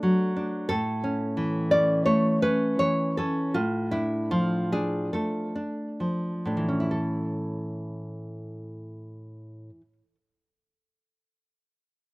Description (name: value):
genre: romantic piece for solo classical guitar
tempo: 61-90 BPM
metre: 4/4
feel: rubato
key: A major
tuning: A4 = 440 Hz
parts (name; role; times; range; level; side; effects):
- nylon-string guitar; solo; 0.0-10.1 s; A2 to D5; -25 LUFS; equal; none
room: light reverb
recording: recorded outdoors, with no room sound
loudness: -24 LUFS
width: side -23 dB against mid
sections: 0.0-6.9 A section; 6.9-10.3 B section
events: slowing down 0.0-6.9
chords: 0.0 D; 0.7 A; 3.5 Dm/A; 6.9 A